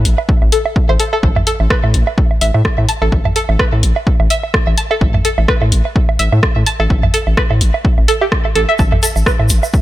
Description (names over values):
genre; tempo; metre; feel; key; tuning
minimal techno; 127 BPM; 4/4; swing 56% on 16ths; unclear; A4 = 438 Hz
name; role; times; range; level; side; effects
rubbery square bass; bass; 0.0-9.6 s; A1 to A2; -14 LUFS; equal; sidechain pumping
house drum kit; drums; 0.1-9.6 s; hi-hat, rim click; -19 LUFS; left 1 dB; none
electronic woodblock and toms; percussion; 0.2-9.7 s; none; -21 LUFS; right 4 dB; dub echo
electronic kick drum; drums; 0.3-9.8 s; none; -15 LUFS; equal; none
string-like resonator pluck; riff; 0.5-9.3 s; G4 to A5; -19 LUFS; equal; chorus, phaser, cassette tape, sidechain pumping, digital delay
tube shaker; percussion; 8.8-9.8 s; none; -22 LUFS; right 2 dB; none
room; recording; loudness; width
little or no reverb; none; -11 LUFS; side -15 dB against mid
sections
0.0-9.8 A section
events
none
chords
0.0 A5